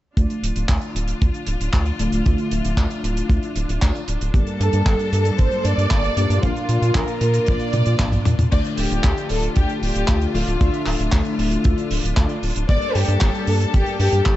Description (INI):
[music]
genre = italo disco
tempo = 115 BPM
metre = 4/4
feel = straight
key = D minor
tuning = A4 = 441 Hz
[part]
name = clear studio string section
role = sustained chords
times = 0.2-14.4 s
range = G3 to A4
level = -29 LUFS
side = left 1 dB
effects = none
[part]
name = chorused polysynth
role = stabs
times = 0.2-14.4 s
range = G2 to F5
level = -26 LUFS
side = left 2 dB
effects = none
[part]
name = round analog bass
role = bass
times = 0.2-14.4 s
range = D1 to Bb2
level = -21 LUFS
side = equal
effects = none
[part]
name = damped 70s drum kit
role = drums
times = 0.2-14.4 s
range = crash cymbal, handclaps, hi-hat, toms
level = -27 LUFS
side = equal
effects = none
[part]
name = kick drum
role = drums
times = 0.2-14.4 s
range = none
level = -18 LUFS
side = equal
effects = none
[part]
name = dark studio violin section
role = melody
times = 4.6-14.4 s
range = F4 to D5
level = -24 LUFS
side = equal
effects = digital delay
[sound]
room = light reverb, studio ambience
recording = dark, warm production, nothing above 8.0 kHz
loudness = -17 LUFS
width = side -14 dB against mid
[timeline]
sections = 0.2-8.5 A section; 8.5-14.4 B section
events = drum fill 7.7-8.5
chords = 0.2 Dm; 4.3 Gmadd9; 6.4 Bb; 8.5 Dm; 12.7 Gmadd9